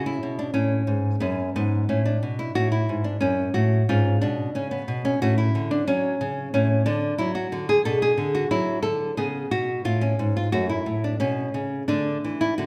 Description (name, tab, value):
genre	classical, baroque-style dance for nylon-string guitar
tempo	90 BPM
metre	4/4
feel	rubato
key	F# minor from 6.5 s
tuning	A4 = 440 Hz
part	nylon-string guitar	solo	0.0-12.7 s	F#2 to A4	-24 LUFS	equal	none
room	wet recital hall reverb, RT60 1.3 s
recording	recorded in a church or concert hall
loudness	-24 LUFS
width	mono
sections	0.0-12.7 A section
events	none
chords	0.0 A; 1.2 F#m; 3.9 C#5/G#; 5.2 F#m/A; 7.9 Bm; 9.2 C#5; 10.5 F#m; 11.9 D5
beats	0.57 | 1.23 1.90 2.56 3.22 | 3.88 4.55 5.21 5.87 | 6.54 7.20 7.86 8.51 | 9.18 9.85 10.54 11.21 | 11.89 12.59